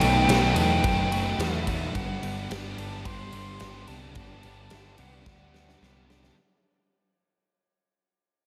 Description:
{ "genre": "rock, shoegaze and dream pop", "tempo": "109 BPM", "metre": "4/4", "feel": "straight", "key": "unclear", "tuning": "A4 = 442 Hz", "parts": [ { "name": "silver concert flute", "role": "melody", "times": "0.0-6.1 s", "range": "E5 to C6", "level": "-32 LUFS", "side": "equal", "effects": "slapback echo" }, { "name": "soft string machine", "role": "sustained chords", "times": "0.0-6.3 s", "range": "G4 to D#6", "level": "-41 LUFS", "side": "equal", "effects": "ensemble chorus" }, { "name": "twelve-string electric guitar", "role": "arpeggios", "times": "0.0-6.4 s", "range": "F#3 to D#4", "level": "-39 LUFS", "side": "equal", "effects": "none" }, { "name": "biting overdriven guitar", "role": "riff", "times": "0.0-6.4 s", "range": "G2 to G4", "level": "-36 LUFS", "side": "equal", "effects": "analog chorus" }, { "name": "overdriven semi-hollow guitar", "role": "riff", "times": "0.0-6.4 s", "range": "G2 to D#4", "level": "-34 LUFS", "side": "equal", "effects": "reverse reverb" }, { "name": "growling picked electric bass", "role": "bass", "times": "0.0-6.3 s", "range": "F#1 to E2", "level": "-32 LUFS", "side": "equal", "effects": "overdrive" }, { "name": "big rock drum kit", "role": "drums", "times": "0.0-6.4 s", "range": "kick drum, ride cymbal, snare drum", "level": "-34 LUFS", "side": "equal", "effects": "none" } ], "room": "light reverb, studio reverb", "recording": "none", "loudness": "-25 LUFS", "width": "mono", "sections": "0.0-6.4 A section", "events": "fade-out 0.0-6.4; drum fill 5.3-6.4", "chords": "0.0 B7; 1.9 Gmaj7", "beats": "0.28 0.84 1.39 | 1.94 2.49 3.05 3.60 | 4.15 4.71 5.26 5.81" }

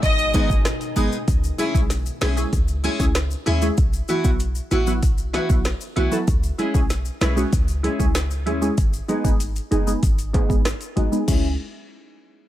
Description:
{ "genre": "dancehall", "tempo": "96 BPM", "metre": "4/4", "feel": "straight", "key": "C# minor", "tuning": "A4 = 440 Hz", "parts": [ { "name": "warm studio violin section", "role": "melody", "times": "0.0-0.5 s", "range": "D#5", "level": "-24 LUFS", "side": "left 1 dB", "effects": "tape echo" }, { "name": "deep dark ambient pad", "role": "sustained chords", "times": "0.0-1.3 s", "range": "B2 to G#4", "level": "-34 LUFS", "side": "left 1 dB", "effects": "chorus, built-in reverb, sidechain pumping" }, { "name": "short 808-style bass", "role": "bass", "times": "0.0-11.6 s", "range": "F#1 to D#2", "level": "-23 LUFS", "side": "equal", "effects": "none" }, { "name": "afro-pop drum kit", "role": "drums", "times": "0.0-11.4 s", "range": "crash cymbal, hi-hat, kick drum, rim click, snare drum", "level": "-22 LUFS", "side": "equal", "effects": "none" }, { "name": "maracas and timbales", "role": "percussion", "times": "0.0-11.6 s", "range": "none", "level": "-35 LUFS", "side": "left 4 dB", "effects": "none" }, { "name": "glassy wavetable pluck", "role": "accompaniment", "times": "0.3-11.6 s", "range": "D#3 to B4", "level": "-26 LUFS", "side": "right 1 dB", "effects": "chorus, sidechain pumping, low-pass filter" }, { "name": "picked steel-string acoustic guitar", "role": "arpeggios", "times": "0.3-11.5 s", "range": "E3 to G#4", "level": "-27 LUFS", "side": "equal", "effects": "low-pass filter" } ], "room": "digital ambience", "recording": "none", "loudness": "-18 LUFS", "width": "side -13 dB against mid", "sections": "0.0-1.3 A section; 1.3-11.3 B section; 11.3-12.5 C section", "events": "filter sweep 1.3-11.3", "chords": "0.0 G#m; 1.3 C#m; 3.8 Bsus4; 6.3 C#m; 8.8 G#m; 11.3 C#m", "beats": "0.03 0.65 | 1.28 1.90 2.53 3.15 | 3.78 4.40 5.03 5.65 | 6.28 6.90 7.53 8.15 | 8.78 9.40 10.03 10.65 | 11.28" }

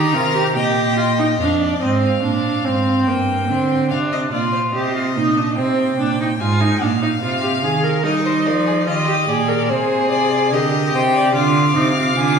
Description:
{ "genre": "classical, baroque-style fugue for string quartet", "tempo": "72 BPM", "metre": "4/4", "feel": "straight", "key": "unclear", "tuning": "A4 = 440 Hz", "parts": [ { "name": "clear violin", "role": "melody", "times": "0.0-12.4 s", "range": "C5 to D6", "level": "-23 LUFS", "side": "left 6 dB", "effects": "none" }, { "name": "clear violin", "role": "second line", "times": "0.0-1.4, 8.1-12.4 s", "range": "G4 to Ab5", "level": "-23 LUFS", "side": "left 2 dB", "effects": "none" }, { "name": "clear viola", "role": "accompaniment", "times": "0.0-12.4 s", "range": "Bb3 to Bb4", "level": "-19 LUFS", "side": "right 1 dB", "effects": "none" }, { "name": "clear cello", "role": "bass", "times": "0.0-12.4 s", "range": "F2 to G3", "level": "-20 LUFS", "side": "right 4 dB", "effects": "none" } ], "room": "wet recital hall reverb, RT60 1.6 s", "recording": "recorded in a church or concert hall", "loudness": "-15 LUFS", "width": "side -6 dB against mid", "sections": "0.0-1.4 A section; 1.4-12.4 B section", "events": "none", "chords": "0.0 Eb; 1.4 Dm7b5/F; 3.1 Gm; 4.7 Cm7; 6.4 Fm/Ab; 8.0 Eb; 9.7 Ab/C; 11.3 Ddim", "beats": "0.56 | 1.40 2.24 3.07 3.91 | 4.74 5.57 6.39 7.22 | 8.04 8.87 9.69 10.52 | 11.34 12.17" }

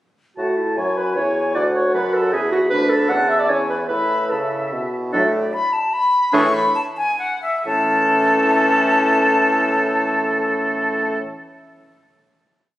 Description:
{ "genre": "quick classical-period movement for wind quintet", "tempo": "128-156 BPM", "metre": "3/4", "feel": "rubato", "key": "A major", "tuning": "A4 = 440 Hz", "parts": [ { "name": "hollow silver concert flute", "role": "melody", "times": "0.4-11.2 s", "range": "D5 to F#6", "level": "-21 LUFS", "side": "left 2 dB", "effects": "none" }, { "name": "clear oboe", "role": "second line", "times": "0.4-11.2 s", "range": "G#4 to B5", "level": "-22 LUFS", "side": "equal", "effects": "none" }, { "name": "warm French horn", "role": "accompaniment", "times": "0.4-11.2 s", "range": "E3 to A4", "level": "-26 LUFS", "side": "equal", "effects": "none" }, { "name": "warm clarinet", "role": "accompaniment", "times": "0.4-11.2 s", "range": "C#4 to F#5", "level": "-22 LUFS", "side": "right 1 dB", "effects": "none" }, { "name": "clear bassoon", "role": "bass", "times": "0.4-11.2 s", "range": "D2 to C#3", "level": "-23 LUFS", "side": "equal", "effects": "none" } ], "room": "moderate scoring stage reverb, RT60 1.8 s", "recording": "recorded on a phone in the room, studio reverb", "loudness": "-16 LUFS", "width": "side -14 dB against mid", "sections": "0.4-5.1 A section; 5.1-7.7 coda; 7.7-10.4 final chord", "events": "slowing down 4.5-7.7", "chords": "0.4 A; 1.6 D; 2.7 Bm/D; 3.1 A/E; 3.5 E; 3.9 A; 5.1 D/A; 6.3 E7/A; 7.7 A", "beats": "| 0.38 0.77 1.16 | 1.55 1.94 2.33 | 2.71 3.10 3.50 | 3.90 4.31 4.72 | 5.13 5.53 5.93 | 6.34 6.76 7.20 | 7.66 8.12 8.58 | 9.04 9.50 9.96" }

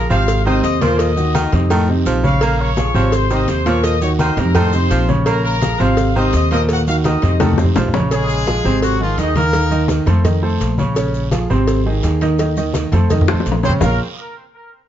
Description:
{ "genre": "latin, salsa", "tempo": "168 BPM", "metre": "4/4", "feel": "straight", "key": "Bb minor", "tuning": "A4 = 440 Hz", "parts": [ { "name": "bright trumpet section", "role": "melody", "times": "0.0-7.5 s", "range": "Gb4 to Eb6", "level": "-22 LUFS", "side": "left 2 dB", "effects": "none" }, { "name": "clear grand piano", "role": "accompaniment", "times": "0.0-14.0 s", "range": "A2 to F5", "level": "-19 LUFS", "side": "right 1 dB", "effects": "none" }, { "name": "upright bass", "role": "bass", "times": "0.0-14.0 s", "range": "Ab1 to F2", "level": "-18 LUFS", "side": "equal", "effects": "none" }, { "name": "clear baritone saxophone", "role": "second line", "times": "0.1-7.9 s", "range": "Eb3 to Bb3", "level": "-23 LUFS", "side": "right 2 dB", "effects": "none" }, { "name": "congas", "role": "percussion", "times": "0.1-13.9 s", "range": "none", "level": "-21 LUFS", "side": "left 1 dB", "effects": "none" }, { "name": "guiro", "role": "percussion", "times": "0.1-13.9 s", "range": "none", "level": "-36 LUFS", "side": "right 6 dB", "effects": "none" }, { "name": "maracas", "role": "percussion", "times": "0.1-13.9 s", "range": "none", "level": "-38 LUFS", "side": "left 7 dB", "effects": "none" }, { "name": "cowbell and bongos", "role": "percussion", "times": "0.3-13.9 s", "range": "none", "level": "-24 LUFS", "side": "left 2 dB", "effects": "none" }, { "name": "brilliant horn section", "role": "melody", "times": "8.1-9.9, 13.6-14.0 s", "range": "F3 to Eb5", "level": "-21 LUFS", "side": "left 1 dB", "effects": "tape echo" } ], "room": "light reverb", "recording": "dark, warm production, nothing above 7.6 kHz", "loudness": "-13 LUFS", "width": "side -11 dB against mid", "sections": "0.0-8.1 A section; 8.1-13.8 B section; 13.8-14.9 C section", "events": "drum fill 7.4-8.1, 13.1-13.8", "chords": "0.3 Ab; 1.0 Ebm; 1.7 F7; 2.4 Bbm7; 3.1 Ab; 3.8 Ebm; 4.6 F7; 5.3 Bbm7; 6.0 Ab; 6.7 Ebm; 7.4 F7; 8.1 Bbm7; 8.8 Ab; 9.5 Eb5; 10.2 F7; 11.0 Bbm7; 11.7 Ab; 12.4 F7/Eb; 13.1 F7; 13.8 Bbm7", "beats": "0.28 0.64 | 0.99 1.35 1.70 2.06 | 2.42 2.77 3.13 3.48 | 3.84 4.20 4.55 4.91 | 5.26 5.62 5.97 6.33 | 6.69 7.04 7.40 7.76 | 8.11 8.47 8.82 9.18 | 9.54 9.89 10.25 10.61 | 10.96 11.32 11.68 12.03 | 12.39 12.75 13.10 13.46 | 13.82" }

